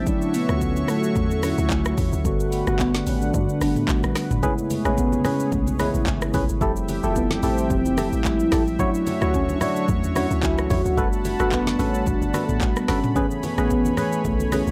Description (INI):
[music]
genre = amapiano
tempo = 110 BPM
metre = 4/4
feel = swing 55% on 16ths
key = A major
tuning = A4 = 439 Hz
[part]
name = warm velvety synth lead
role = melody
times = 0.0-14.7 s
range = A3 to F#4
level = -29 LUFS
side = equal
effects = chorus, tremolo, analog delay
[part]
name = mellow tine electric piano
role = accompaniment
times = 0.0-14.7 s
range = C#3 to B4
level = -27 LUFS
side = equal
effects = phaser
[part]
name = warm analog pad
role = sustained chords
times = 0.0-14.7 s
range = G3 to C#6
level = -35 LUFS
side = equal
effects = chorus, sidechain pumping
[part]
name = deep log drum bass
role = bass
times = 0.0-14.7 s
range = F1 to G2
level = -28 LUFS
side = equal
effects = none
[part]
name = afro-pop drum kit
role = drums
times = 0.1-14.7 s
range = handclaps, hi-hat, kick drum, rim click, shaker, snare drum, toms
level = -30 LUFS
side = equal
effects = none
[part]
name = percussive organ stab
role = stabs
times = 4.4-14.6 s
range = C#4 to C#5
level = -30 LUFS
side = equal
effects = chorus, analog delay
[part]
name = congas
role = percussion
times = 4.4-14.7 s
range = none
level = -34 LUFS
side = equal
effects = none
[sound]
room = digital ambience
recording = dry, gritty hardware recording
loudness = -22 LUFS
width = mono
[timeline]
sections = 0.0-14.7 A section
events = none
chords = 0.1 Dmaj9; 2.2 Gmaj9; 4.4 Amaj9; 6.6 Fmaj9; 8.8 Dmaj9; 11.0 Gmaj9; 13.2 Amaj9